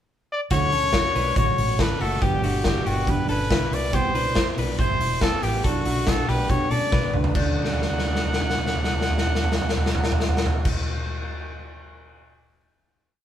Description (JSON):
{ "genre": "jangly indie pop", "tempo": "140 BPM", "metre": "4/4", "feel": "straight", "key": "D major", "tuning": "A4 = 439 Hz", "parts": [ { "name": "clear trumpet", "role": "melody", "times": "0.3-10.7 s", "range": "F#4 to F#5", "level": "-26 LUFS", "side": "left 1 dB", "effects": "none" }, { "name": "picked steel-string acoustic guitar", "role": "accompaniment", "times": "0.5-10.9 s", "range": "G2 to E4", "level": "-31 LUFS", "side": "right 5 dB", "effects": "none" }, { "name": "direct-recorded clean electric guitar", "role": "arpeggios", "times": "0.5-10.7 s", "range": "A3 to C#5", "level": "-30 LUFS", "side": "left 2 dB", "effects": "none" }, { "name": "vintage muted fingered electric bass", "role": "bass", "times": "0.5-10.7 s", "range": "E1 to B2", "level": "-28 LUFS", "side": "right 1 dB", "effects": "none" }, { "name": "raw garage drum kit", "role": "drums", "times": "0.5-12.2 s", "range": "crash cymbal, hi-hat, kick drum, snare drum, toms", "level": "-23 LUFS", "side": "equal", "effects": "none" } ], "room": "moderate small room reverb, RT60 0.5 s", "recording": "band playing live in one room", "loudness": "-20 LUFS", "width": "side -10 dB against mid", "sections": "0.0-0.5 pickup bar; 0.5-7.3 verse; 7.3-10.8 final chord", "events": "drum fill 6.9-7.3, 7.6-10.6", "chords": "0.0 N.C.; 0.5 Dmaj7; 2.2 Gmaj7; 3.7 Cmaj7; 5.6 Bm7; 7.3 Dmaj7" }